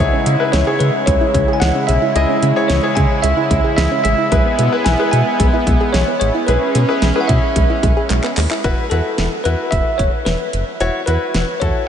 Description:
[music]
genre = synth-pop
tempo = 111 BPM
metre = 4/4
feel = straight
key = unclear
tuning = A4 = 438 Hz
[part]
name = bell-like tine electric piano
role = melody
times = 0.0-11.9 s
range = A4 to G#5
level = -20 LUFS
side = equal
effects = fast stereo tremolo, ping-pong delay
[part]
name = clear concert grand piano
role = accompaniment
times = 0.0-11.9 s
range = E4 to D#5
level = -22 LUFS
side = left 3 dB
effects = none
[part]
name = brassy analog pad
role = sustained chords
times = 0.0-8.6 s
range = C#3 to E4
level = -22 LUFS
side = right 1 dB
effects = chorus
[part]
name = soft round pluck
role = arpeggios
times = 0.0-8.6 s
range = G#3 to G#4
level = -24 LUFS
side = right 3 dB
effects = chorus, ping-pong delay
[part]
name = round analog bass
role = bass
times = 0.0-11.7 s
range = E1 to C#3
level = -17 LUFS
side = equal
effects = none
[part]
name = pop drum kit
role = drums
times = 0.3-11.7 s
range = handclaps, hi-hat, kick drum, snare drum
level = -20 LUFS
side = equal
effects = none
[sound]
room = moderate huge ambient reverb, RT60 8.9 s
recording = dreamy mix soaked in reverb, nothing above 10.3 kHz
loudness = -13 LUFS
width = side -8 dB against mid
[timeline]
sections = 0.0-8.6 A section; 8.6-11.9 B section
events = drum fill 8.1-8.6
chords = 0.0 C#m; 8.6 Esus2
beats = 0.54 1.07 1.62 | 2.16 2.70 3.24 3.78 | 4.32 4.86 5.40 5.94 | 6.48 7.02 7.56 8.10 | 8.64 9.18 9.72 10.26 | 10.80 11.35

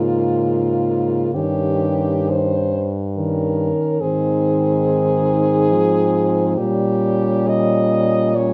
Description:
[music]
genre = classical, lyrical piece for horn quartet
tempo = 62-72 BPM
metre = 3/4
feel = rubato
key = Ab major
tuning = A4 = 440 Hz
[part]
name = clear French horn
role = melody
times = 0.0-8.5 s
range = F4 to Eb5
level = -23 LUFS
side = equal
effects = none
[part]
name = mellow French horn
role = second line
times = 0.0-8.5 s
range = Bb3 to Db4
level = -25 LUFS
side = equal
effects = none
[part]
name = mellow French horn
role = accompaniment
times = 0.0-8.5 s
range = Db3 to G3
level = -24 LUFS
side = equal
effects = none
[part]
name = clear French horn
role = bass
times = 0.0-8.5 s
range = G2 to Bb2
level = -24 LUFS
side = equal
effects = none
[sound]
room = moderate stone room reverb, RT60 0.9 s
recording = none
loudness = -18 LUFS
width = mono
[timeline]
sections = 0.0-8.5 A section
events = none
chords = 0.0 Bbm7/Ab; 1.3 Eb7/G; 4.0 Ab; 6.6 Gdim/Bb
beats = 0.48 | 1.34 2.27 3.16 | 4.01 4.88 5.73 | 6.58 7.50 8.37

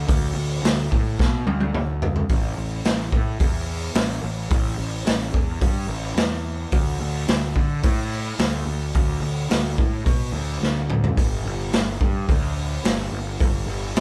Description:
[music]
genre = blues rock power trio and southern rock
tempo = 108 BPM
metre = 4/4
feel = straight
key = unclear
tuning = A4 = 439 Hz
[part]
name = fuzz picked electric bass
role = bass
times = 0.0-14.0 s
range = G1 to D3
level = -28 LUFS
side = equal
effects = overdrive
[part]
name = raw garage drum kit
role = drums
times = 0.1-14.0 s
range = hi-hat, kick drum, snare drum, toms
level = -24 LUFS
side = equal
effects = none
[sound]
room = little or no reverb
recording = band playing live in one room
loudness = -23 LUFS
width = mono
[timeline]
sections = 0.0-2.3 A section; 2.3-14.0 B section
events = drum fill 1.2-2.3, 10.6-11.2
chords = none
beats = | 0.08 0.63 1.19 1.74 | 2.29 2.85 3.40 3.96 | 4.51 5.07 5.62 6.18 | 6.73 7.29 7.84 8.40 | 8.95 9.51 10.06 10.62 | 11.17 11.73 12.29 12.84 | 13.40 13.96

